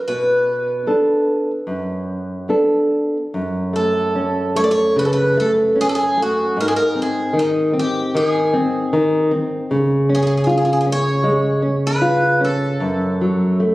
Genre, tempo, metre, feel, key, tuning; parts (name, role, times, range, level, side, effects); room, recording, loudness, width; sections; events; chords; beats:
fado-style ballad; 76 BPM; 4/4; rubato; B minor, F# harmonic minor from 3.3 s; A4 = 440 Hz
picked twelve-string acoustic guitar; melody; 0.1-13.7 s; D#4 to D5; -20 LUFS; equal
nylon-string guitar; accompaniment; 0.1-13.7 s; F#2 to A4; -17 LUFS; equal
wet recital hall reverb, RT60 1.8 s; recorded on a phone in the room, club reverb; -16 LUFS; side -18 dB against mid
0.0-3.3 A section; 3.3-13.7 B section
0.1 Bm7; 3.3 F#m; 6.6 G#; 9.7 C#; 12.8 F#m
| 0.07 0.87 1.66 2.49 | 3.33 4.14 4.96 5.78 | 6.58 7.36 8.15 8.94 | 9.71 10.48 11.25 12.02 | 12.81 13.61